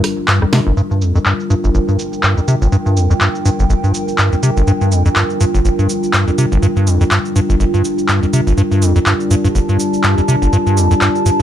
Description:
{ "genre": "acid house", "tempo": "123 BPM", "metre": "4/4", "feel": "swing 57% on 16ths", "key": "G minor", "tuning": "A4 = 439 Hz", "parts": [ { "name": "dark analog pad", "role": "sustained chords", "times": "0.0-11.4 s", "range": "G3 to D5", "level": "-20 LUFS", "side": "left 3 dB", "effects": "chorus" }, { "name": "punchy analog drum machine", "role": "drums", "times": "0.0-11.4 s", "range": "handclaps, hi-hat, rim click, shaker, snare drum", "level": "-18 LUFS", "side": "equal", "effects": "low-pass filter on snare, studio reverb, low-pass filter on hats, low-pass filter on perc" }, { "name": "acid bass, square", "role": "riff", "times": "0.3-11.4 s", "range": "G1 to C3", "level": "-13 LUFS", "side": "equal", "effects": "analog chorus" }, { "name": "warbly tape-like pad", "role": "texture", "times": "1.1-11.4 s", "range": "F4 to A5", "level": "-21 LUFS", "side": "right 5 dB", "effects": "chorus, built-in reverb" } ], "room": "light reverb", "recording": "none", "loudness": "-12 LUFS", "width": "side -11 dB against mid", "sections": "0.8-11.4 A section", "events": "drum fill 0.5", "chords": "0.0 Gm7" }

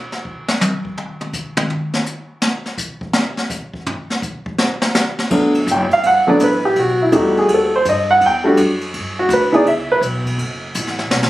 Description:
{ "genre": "jazz piano trio", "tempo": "166 BPM", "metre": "4/4", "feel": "swing 66% on 8ths", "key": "G major", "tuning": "A4 = 436 Hz", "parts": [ { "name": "jazz brush drum kit", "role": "drums", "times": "0.1-11.3 s", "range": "crash cymbal, hi-hat, kick drum, ride cymbal, snare drum, toms", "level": "-21 LUFS", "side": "equal", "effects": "none" }, { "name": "warm baby grand piano", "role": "melody", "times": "5.3-10.0 s", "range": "F#3 to G5", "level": "-13 LUFS", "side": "equal", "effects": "none" }, { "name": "upright bass", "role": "bass", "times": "5.3-11.3 s", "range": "F#1 to G2", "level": "-24 LUFS", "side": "equal", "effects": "none" } ], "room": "light reverb", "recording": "recorded on a phone in the room, club reverb", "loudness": "-15 LUFS", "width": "side -16 dB against mid", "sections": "0.0-5.3 A section; 5.3-11.3 A section", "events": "grand piano solo 0.0-11.3; drum solo 0.0-5.3", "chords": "0.0 N.C.; 5.3 Gmaj9; 6.8 B7b13; 8.2 Em9; 9.7 Bsus24; 10.4 F#m" }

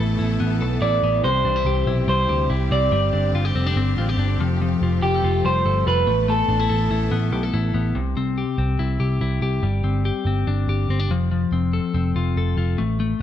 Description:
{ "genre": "indie pop", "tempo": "143 BPM", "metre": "4/4", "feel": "straight", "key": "unclear", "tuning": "A4 = 439 Hz", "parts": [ { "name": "clear studio string section", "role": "sustained chords", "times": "0.0-7.9 s", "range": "D3 to A4", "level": "-31 LUFS", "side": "right 2 dB", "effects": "none" }, { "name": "clean electric guitar", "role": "arpeggios", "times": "0.0-13.2 s", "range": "C3 to A4", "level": "-24 LUFS", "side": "left 6 dB", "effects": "none" }, { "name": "vintage muted picked electric bass", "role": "bass", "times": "0.0-13.1 s", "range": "F1 to D2", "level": "-22 LUFS", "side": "right 1 dB", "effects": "none" }, { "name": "electric guitar through a small old amp", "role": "melody", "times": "0.8-7.7 s", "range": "G4 to D5", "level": "-22 LUFS", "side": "right 1 dB", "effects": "slapback echo" } ], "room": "light reverb", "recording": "dark, warm production", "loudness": "-18 LUFS", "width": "side -10 dB against mid", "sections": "0.0-8.0 A section; 8.0-13.2 B section", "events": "none", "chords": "0.0 Asus2; 1.2 C; 2.9 Gsus4; 4.4 Fadd9; 6.1 Asus2; 8.0 C; 9.6 Gsus4; 11.1 F" }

